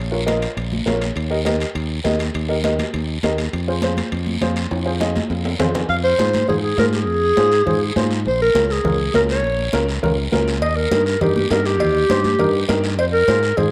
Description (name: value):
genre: latin, cumbia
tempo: 203 BPM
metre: 4/4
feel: straight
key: F minor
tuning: A4 = 440 Hz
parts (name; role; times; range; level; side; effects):
- modern bright fingered electric bass; bass; 0.0-13.7 s; Bb1 to Ab2; -25 LUFS; equal; none
- dark upright piano; accompaniment; 0.1-13.7 s; Db4 to Ab5; -26 LUFS; equal; cassette tape
- congas; percussion; 0.1-13.7 s; none; -28 LUFS; equal; none
- guiro; percussion; 0.3-13.7 s; none; -33 LUFS; equal; none
- timbales and cowbell; percussion; 0.3-5.8, 10.6-13.7 s; none; -31 LUFS; equal; none
- breathy clarinet; melody; 5.9-13.7 s; G4 to F5; -20 LUFS; equal; none
room: wet spring reverb, RT60 1.3 s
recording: home recording on cassette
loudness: -19 LUFS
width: mono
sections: 0.0-5.9 A section; 5.9-13.7 B section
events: drum fill 4.7-5.9; upright piano fill 5.5-5.9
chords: 0.0 Bbm; 1.2 Eb; 3.5 Fm; 8.3 Bbm; 10.6 Eb; 13.0 Fm